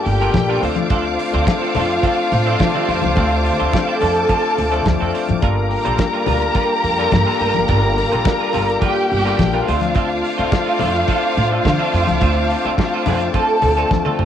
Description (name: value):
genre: disco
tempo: 106 BPM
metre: 4/4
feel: straight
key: unclear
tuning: A4 = 441 Hz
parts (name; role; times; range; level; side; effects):
- barky tine electric piano; accompaniment; 0.0-14.2 s; G3 to C5; -23 LUFS; left 9 dB; overdrive, cassette tape
- clear studio string section; sustained chords; 0.0-14.2 s; Bb3 to D6; -25 LUFS; equal; cassette tape
- warm studio string section; second line; 0.1-14.2 s; F4 to Bb5; -19 LUFS; right 1 dB; cassette tape
- clean electric guitar; accompaniment; 0.1-14.2 s; F3 to C5; -28 LUFS; right 11 dB; lush chorus, cassette tape
- upright bass; bass; 0.1-14.2 s; F#1 to D3; -21 LUFS; right 1 dB; none
- damped 70s drum kit; drums; 0.1-14.2 s; hi-hat, kick drum, snare drum, toms; -21 LUFS; right 1 dB; cassette tape
- congas; percussion; 0.3-14.0 s; none; -25 LUFS; left 9 dB; none
room: light reverb, studio ambience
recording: home recording on cassette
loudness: -15 LUFS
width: side -9 dB against mid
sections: 0.0-14.2 A section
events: drum fill 13.9-14.2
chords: 0.0 Gm7; 0.6 Dm7; 5.4 Gm7; 9.7 Dm7